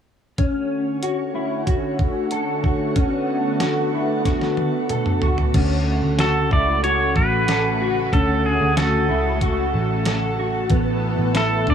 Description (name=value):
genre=dream pop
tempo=93 BPM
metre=4/4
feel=straight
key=unclear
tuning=A4 = 441 Hz
part: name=lush unison pad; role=sustained chords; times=0.4-11.7 s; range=C#3 to A4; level=-24 LUFS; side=right 1 dB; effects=chorus
part: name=mellow electric guitar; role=arpeggios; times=0.4-11.7 s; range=B3 to A4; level=-24 LUFS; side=left 2 dB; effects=ensemble chorus, tape echo
part: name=detuned 8-bit digital drum machine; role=drums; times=0.4-11.7 s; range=crash cymbal, hi-hat, kick drum, snare drum, toms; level=-22 LUFS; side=equal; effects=none
part: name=vintage muted picked electric bass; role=bass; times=5.5-11.7 s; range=G#1 to D2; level=-23 LUFS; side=right 1 dB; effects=none
part: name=pedal steel guitar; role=melody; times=6.2-11.7 s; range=G#4 to D5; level=-22 LUFS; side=right 1 dB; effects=tape echo
room=light reverb, digital ambience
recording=none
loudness=-18 LUFS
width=side -8 dB against mid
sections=0.4-5.5 A section; 5.5-11.7 B section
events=drum fill 4.3-5.5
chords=0.4 Dmaj7; 10.7 Asus2